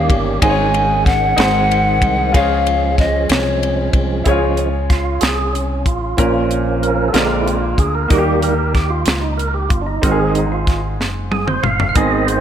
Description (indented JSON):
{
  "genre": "slow gospel",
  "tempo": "62 BPM (dotted quarters)",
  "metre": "6/8",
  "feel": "straight",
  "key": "Db major",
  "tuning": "A4 = 440 Hz",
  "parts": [
    { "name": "mellow hollow pan flute", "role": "melody", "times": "0.0-4.0 s", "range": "Db5 to Ab5", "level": "-17 LUFS", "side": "left 2 dB", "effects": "none" },
    { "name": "clear baby grand piano", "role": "accompaniment", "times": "0.0-12.4 s", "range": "Ab2 to Db5", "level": "-22 LUFS", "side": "left 1 dB", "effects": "none" },
    { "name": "percussive tonewheel organ", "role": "sustained chords", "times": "0.0-12.4 s", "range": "D3 to F5", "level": "-19 LUFS", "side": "right 3 dB", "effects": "slow rotary speaker, overdrive" },
    { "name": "fingered electric bass", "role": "bass", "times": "0.0-12.4 s", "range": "Gb1 to Eb2", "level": "-20 LUFS", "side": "equal", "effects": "none" },
    { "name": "tight funk drum kit", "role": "drums", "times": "0.1-12.4 s", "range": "hi-hat, kick drum, ride cymbal, snare drum, toms", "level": "-18 LUFS", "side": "equal", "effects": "none" }
  ],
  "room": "light reverb",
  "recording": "none",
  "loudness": "-14 LUFS",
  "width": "side -9 dB against mid",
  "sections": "0.0-4.3 A section; 4.3-12.4 B section",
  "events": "tonewheel organ solo 4.3-12.4; drum fill 11.0-12.0",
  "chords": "0.4 Absus4; 1.4 Ab; 2.3 Db; 6.2 Bbm; 7.1 Bb7; 8.1 Eb; 10.0 Ab"
}